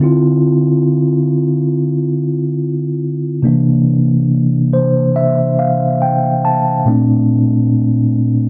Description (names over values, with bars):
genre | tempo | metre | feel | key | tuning
R&B | 70 BPM | 4/4 | straight | D minor | A4 = 440 Hz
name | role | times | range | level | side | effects
mellow tine electric piano | solo | 0.0-8.5 s | Bb2 to A5 | -14 LUFS | equal | none
room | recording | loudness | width
wet booth ambience, RT60 0.2 s | dark, warm production | -14 LUFS | mono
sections
0.0-8.5 A section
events
tine electric piano fill 4.3-6.9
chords
0.0 Dm9; 3.4 C9; 6.9 Bbmaj9